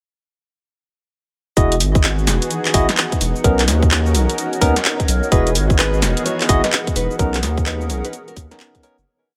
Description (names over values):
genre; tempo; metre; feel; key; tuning
UK garage, two-step garage; 128 BPM; 4/4; swing 63% on 16ths; E lydian; A4 = 440 Hz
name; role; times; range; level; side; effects
warm analog pad; sustained chords; 1.6-9.0 s; B3 to A#4; -30 LUFS; equal; chorus, sidechain pumping
barky tine electric piano; stabs; 1.6-9.0 s; B3 to D#5; -23 LUFS; equal; digital delay
saturated sub bass; bass; 1.6-9.1 s; E1 to D#2; -21 LUFS; equal; sidechain pumping
electronic kick drum; drums; 1.6-8.8 s; none; -20 LUFS; equal; none
garage drum kit; drums; 1.6-9.1 s; cabasa, handclaps, hi-hat, snare drum; -22 LUFS; equal; none
granular cloud pad; texture; 2.4-9.1 s; E3 to F#5; -30 LUFS; equal; built-in reverb, sidechain pumping
nylon-string guitar; melody; 5.3-9.0 s; D#4 to D#5; -27 LUFS; equal; digital delay
room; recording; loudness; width
light reverb; none; -17 LUFS; mono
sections
1.6-9.1 drop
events
drop 1.6-9.1; fade-out 6.6-9.1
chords
1.6 Emaj9; 3.4 Bmaj9; 5.3 Emaj9; 7.2 Bmaj9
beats
| 1.57 2.04 2.50 2.97 | 3.44 3.91 4.38 4.85 | 5.32 5.79 6.25 6.72 | 7.19 7.66 8.13 8.60